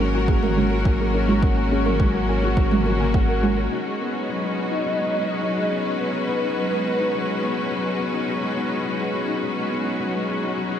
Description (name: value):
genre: piano and strings electronica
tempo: 105 BPM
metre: 4/4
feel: straight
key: unclear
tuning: A4 = 439 Hz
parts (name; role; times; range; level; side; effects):
- rich studio string section; sustained chords; 0.0-10.8 s; G#3 to B4; -26 LUFS; left 1 dB; sidechain pumping
- soft round pluck; arpeggios; 0.0-3.7 s; G#3 to G#5; -26 LUFS; right 3 dB; chorus, sidechain pumping, diffuse ambient delay
- felt-muted upright piano; riff; 0.0-10.8 s; F#3 to F#5; -25 LUFS; left 2 dB; analog chorus, diffuse ambient delay
- warm sub bass; bass; 0.0-3.7 s; G#1; -24 LUFS; equal; sidechain pumping
- electronic kick drum; drums; 0.3-3.3 s; none; -21 LUFS; equal; none
- electronic toms; drums; 0.4-3.0 s; none; -29 LUFS; right 3 dB; low-pass filter on toms, low-pass filter on room
- warm velvety synth lead; melody; 3.7-8.0 s; B4 to D#5; -28 LUFS; right 1 dB; chorus, tremolo
room: wet huge ambient reverb, RT60 7.5 s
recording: dreamy mix soaked in reverb, nothing above 10.7 kHz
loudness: -20 LUFS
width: side -9 dB against mid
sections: 0.0-3.7 A section; 3.7-10.8 B section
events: none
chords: 0.0 F#/G#; 3.7 G#m7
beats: 0.28 0.86 | 1.43 2.00 2.57 3.14 | 3.71 4.28 4.86 5.43 | 6.00 6.57 7.14 7.71 | 8.28 8.86 9.43 10.00 | 10.57